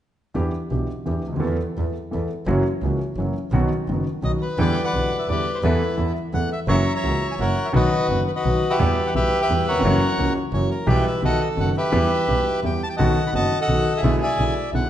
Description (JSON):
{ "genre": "tango", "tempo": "171 BPM", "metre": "3/4", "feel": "rubato", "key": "E minor", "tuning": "A4 = 441 Hz", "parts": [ { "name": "warm concert grand piano", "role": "accompaniment", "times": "0.3-14.9 s", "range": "F#1 to A4", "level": "-23 LUFS", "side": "equal", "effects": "none" }, { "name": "clear double bass", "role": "bass", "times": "0.4-14.9 s", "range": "F#1 to E2", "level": "-24 LUFS", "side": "right 1 dB", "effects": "none" }, { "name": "bandoneon", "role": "melody", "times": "4.2-14.9 s", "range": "E4 to C#6", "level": "-22 LUFS", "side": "left 1 dB", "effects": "none" } ], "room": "wet recital hall reverb, RT60 1.6 s", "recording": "dark, warm production, nothing above 10.7 kHz", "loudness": "-19 LUFS", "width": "side -11 dB against mid", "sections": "0.4-4.6 A section; 4.6-14.9 B section", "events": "none", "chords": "0.4 Em7; 1.4 Asus2/E; 2.5 F#7; 3.5 B; 4.6 Em7; 5.6 Asus2/E; 6.7 F#7; 7.7 B; 8.8 Em; 9.8 F#7; 10.9 Em/B; 11.2 B7; 11.9 Em; 13.0 B7; 14.0 E7/B" }